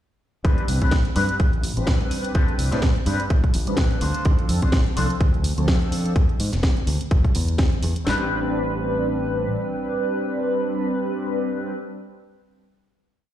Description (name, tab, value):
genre	filtered disco house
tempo	126 BPM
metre	4/4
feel	swing 56% on 16ths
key	A minor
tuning	A4 = 440 Hz
part	mellow synth brass	accompaniment	0.4-11.7 s	F3 to B4	-25 LUFS	equal	chorus, phaser, sidechain pumping, low-pass filter
part	electric guitar with an envelope filter	riff	0.4-11.8 s	C4 to C5	-30 LUFS	left 2 dB	harmonic tremolo, sidechain pumping, low-pass filter
part	modern bright fingered electric bass	bass	0.4-9.5 s	E1 to A2	-24 LUFS	equal	sidechain pumping, low-pass filter
part	house drum kit	drums	0.4-8.2 s	kick drum, snare drum	-20 LUFS	equal	overdrive
part	house drum kit	drums	0.4-8.0 s	hi-hat, snare drum	-29 LUFS	equal	overdrive, sidechain pumping on hats
room	light reverb, digital ambience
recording	played on a big sound system in a bare room, large studio reverb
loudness	-19 LUFS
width	side -12 dB against mid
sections	0.4-8.1 groove; 8.1-11.9 final chord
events	filter sweep 0.4-8.1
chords	0.4 Am11; 4.0 Dm7; 6.2 N.C.; 8.1 Am11